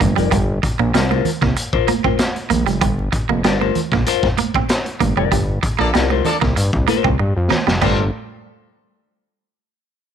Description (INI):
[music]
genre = funk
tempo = 96 BPM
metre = 4/4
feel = straight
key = G minor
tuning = A4 = 444 Hz
[part]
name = clean electric guitar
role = riff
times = 0.0-8.0 s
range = G3 to C4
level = -22 LUFS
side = right 11 dB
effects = tube saturation
[part]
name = fat analog bass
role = bass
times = 0.0-8.1 s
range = F1 to G2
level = -19 LUFS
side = left 1 dB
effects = tube saturation
[part]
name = raw garage drum kit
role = drums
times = 0.0-8.0 s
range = crash cymbal, hi-hat, kick drum, snare drum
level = -20 LUFS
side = left 1 dB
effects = none
[part]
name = congas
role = percussion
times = 0.0-8.1 s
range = none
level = -26 LUFS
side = right 10 dB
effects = none
[part]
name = semi-hollow electric guitar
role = accompaniment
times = 0.2-8.0 s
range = F4 to D5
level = -22 LUFS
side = left 14 dB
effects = phaser
[part]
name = dark horn section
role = second line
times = 5.8-8.0 s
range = Bb3 to D5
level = -23 LUFS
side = left 1 dB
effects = none
[sound]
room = light reverb, studio ambience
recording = 1960s-style stereo with parts hard left and right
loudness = -15 LUFS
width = side -8 dB against mid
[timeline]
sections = 0.0-7.8 A section; 7.8-10.1 B section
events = band accent 5.3-7.8; drum fill 7.2-7.8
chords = 0.0 Gm11; 7.8 N.C.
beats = | 0.32 0.95 1.57 2.19 | 2.82 3.44 4.07 4.69 | 5.32 5.94 6.56 7.19 | 7.81